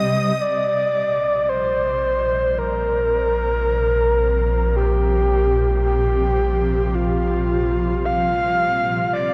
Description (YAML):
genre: ambient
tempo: 55 BPM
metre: 4/4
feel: straight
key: unclear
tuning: A4 = 441 Hz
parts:
  - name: breathy flute-like synth lead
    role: melody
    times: 0.0-9.3 s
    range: F4 to F5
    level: -21 LUFS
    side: equal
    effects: chorus, diffuse ambient delay
  - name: shimmering ambient pad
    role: sustained chords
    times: 0.0-9.3 s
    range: Bb2 to C4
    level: -30 LUFS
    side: equal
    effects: chorus, built-in reverb
  - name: deep rumbling drone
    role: bass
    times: 1.6-9.3 s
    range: G1 to C2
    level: -25 LUFS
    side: equal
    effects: built-in reverb
  - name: bowed-like drone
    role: drone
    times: 0.0-9.3 s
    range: C3 to G3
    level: -38 LUFS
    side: equal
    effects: none
room: wet huge ambient reverb, RT60 7.9 s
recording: none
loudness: -20 LUFS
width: mono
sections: 0.4-9.3 A section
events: fade-in on ambient pad 0.4-9.3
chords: 0.4 Bb5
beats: | 0.38 1.47 2.56 3.65 | 4.74 5.83 6.93 8.02 | 9.11